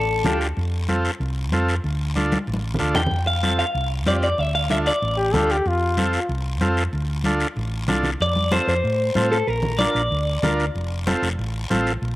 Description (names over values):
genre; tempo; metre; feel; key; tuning
latin, cumbia; 189 BPM; 4/4; straight; unclear; A4 = 440 Hz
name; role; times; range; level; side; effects
clean electric guitar; melody; 0.0-0.4, 3.0-5.2, 8.2-10.5 s; A4 to G5; -23 LUFS; left 1 dB; none
hollow-body short-scale fingered electric bass; bass; 0.0-12.2 s; F1 to A2; -24 LUFS; equal; none
congas; percussion; 0.2-12.2 s; none; -27 LUFS; left 1 dB; none
combo organ; accompaniment; 0.3-11.9 s; C4 to Bb4; -26 LUFS; right 1 dB; cassette tape
guiro; percussion; 0.3-12.2 s; none; -32 LUFS; left 3 dB; none
bright trombone; second line; 5.2-6.3 s; F4 to A4; -23 LUFS; left 2 dB; cassette tape
room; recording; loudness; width
light reverb, small room ambience; home recording on cassette; -19 LUFS; side -17 dB against mid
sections
0.0-8.2 A section; 8.2-12.2 B section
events
drum fill 2.3-3.1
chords
0.0 Dm; 0.6 F; 1.8 Dm; 3.1 F; 4.4 Dm; 5.7 F; 6.9 Dm; 8.2 F; 9.5 Bb; 10.7 F